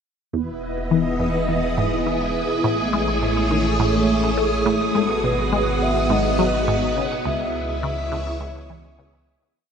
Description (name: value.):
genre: ambient, sequencer-driven space music.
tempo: 104 BPM.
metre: 4/4.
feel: straight.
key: E major.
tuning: A4 = 441 Hz.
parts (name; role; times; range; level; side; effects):
string machine, full ensemble; sustained chords; 0.3-9.6 s; A3 to F#5; -22 LUFS; equal; phaser, ensemble chorus.
resonant blip pluck; riff; 0.3-9.1 s; C#2 to A3; -25 LUFS; left 1 dB; chorus, phaser, ping-pong delay.
round analog bass; bass; 0.3-9.5 s; E1 to C#2; -28 LUFS; equal; none.
wind-like tuned noise texture; texture; 1.4-9.6 s; D#6; -29 LUFS; right 2 dB; built-in reverb.
soft octave-layered synth lead; melody; 5.0-9.2 s; A4 to E5; -26 LUFS; left 2 dB; chorus, tremolo, ping-pong delay.
room: wet huge ambient reverb, RT60 8.5 s.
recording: none.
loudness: -19 LUFS.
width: side -7 dB against mid.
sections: 0.3-9.6 A section.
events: fade-out 6.5-9.6.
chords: 0.3 Emaj7; 2.6 Amaj7; 4.9 G#m7; 7.3 C#m7.